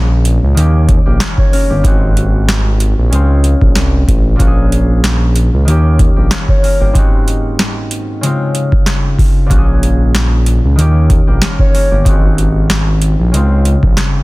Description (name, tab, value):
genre	hip hop, boom-bap hip-hop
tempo	94 BPM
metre	4/4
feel	swing 56% on 16ths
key	unclear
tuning	A4 = 441 Hz
part	concert harp	accompaniment	0.0-14.2 s	Ab2 to Db5	-17 LUFS	left 1 dB	cassette tape, high-pass filter, low-pass filter
part	smooth gliding synth bass	bass	0.0-13.9 s	G1 to Eb2	-11 LUFS	equal	none
part	booming analog drum machine	drums	0.3-14.1 s	hi-hat, kick drum, snare drum	-12 LUFS	equal	overdrive
room	little or no reverb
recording	dense, heavily limited modern master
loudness	-9 LUFS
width	side -21 dB against mid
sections	0.0-14.2 A section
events	break 6.9-9.5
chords	0.0 Bbm7; 0.6 Eb7; 1.8 Ab7; 3.1 Dbmaj7; 4.4 Bbm7; 5.7 Eb7; 6.9 Ab7; 8.2 Dbmaj7; 9.5 Bbm7; 10.8 Eb7; 12.1 Ab7; 13.3 Dbmaj7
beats	0.57 1.20 | 1.84 2.48 3.12 3.76 | 4.40 5.03 5.67 6.31 | 6.95 7.59 8.23 8.86 | 9.50 10.14 10.78 11.42 | 12.05 12.69 13.33 13.97